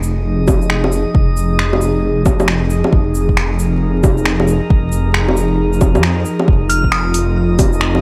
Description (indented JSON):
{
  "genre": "future garage",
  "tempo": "135 BPM",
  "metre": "4/4",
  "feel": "swing 63% on 16ths",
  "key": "F minor",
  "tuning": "A4 = 438 Hz",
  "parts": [
    { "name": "airy breathy pad", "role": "sustained chords", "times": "0.0-8.0 s", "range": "F3 to Ab4", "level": "-22 LUFS", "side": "equal", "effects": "chorus, sidechain pumping" },
    { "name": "swelling detuned saw bass", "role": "bass", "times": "0.0-8.0 s", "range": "F1 to F2", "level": "-19 LUFS", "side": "equal", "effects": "sidechain pumping" },
    { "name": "deep house drum kit", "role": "drums", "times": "0.0-8.0 s", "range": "bongos, finger snaps, hi-hat, shaker", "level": "-21 LUFS", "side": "equal", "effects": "overdrive" },
    { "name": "drifting glass-harmonics texture", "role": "texture", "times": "0.0-8.0 s", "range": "Eb4 to Eb5", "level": "-30 LUFS", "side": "equal", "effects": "chorus, built-in reverb" },
    { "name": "electronic kick drum", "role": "drums", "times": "0.5-7.7 s", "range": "none", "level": "-16 LUFS", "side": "equal", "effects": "overdrive" },
    { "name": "glassy synth bell", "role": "melody", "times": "6.7-7.2 s", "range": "Eb6 to F6", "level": "-23 LUFS", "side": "equal", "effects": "chorus, digital delay" }
  ],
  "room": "light reverb, digital ambience",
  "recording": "vinyl crackle",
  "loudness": "-15 LUFS",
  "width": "mono",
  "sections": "0.0-8.0 A section",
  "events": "none",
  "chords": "0.0 Fm7"
}